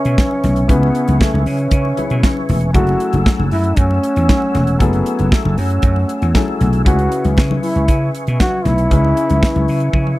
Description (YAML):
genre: disco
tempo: 117 BPM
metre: 4/4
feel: straight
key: F# minor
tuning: A4 = 440 Hz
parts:
  - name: mellow trombone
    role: melody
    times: 0.0-10.2 s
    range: A3 to F#4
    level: -19 LUFS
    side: equal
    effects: none
  - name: warm concert grand piano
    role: accompaniment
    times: 0.0-10.2 s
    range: C#3 to B4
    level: -24 LUFS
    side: left 5 dB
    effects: none
  - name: percussive tonewheel organ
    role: sustained chords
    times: 0.0-10.2 s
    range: A3 to E6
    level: -25 LUFS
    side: equal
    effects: chorus vibrato, slow rotary speaker
  - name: tight funk drum kit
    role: drums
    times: 0.0-10.2 s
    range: hi-hat, kick drum, snare drum, toms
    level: -15 LUFS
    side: equal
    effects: none
  - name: vintage slap bass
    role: bass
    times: 0.1-10.1 s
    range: E1 to C#3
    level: -16 LUFS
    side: equal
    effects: none
  - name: congas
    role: percussion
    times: 0.2-9.7 s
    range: none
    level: -24 LUFS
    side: left 3 dB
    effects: none
room: little or no reverb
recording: dry, close 1970s-style studio recording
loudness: -13 LUFS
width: side -17 dB against mid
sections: 0.0-10.2 A section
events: drum fill 9.9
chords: 0.0 C#m7; 2.7 F#m9; 6.9 C#m7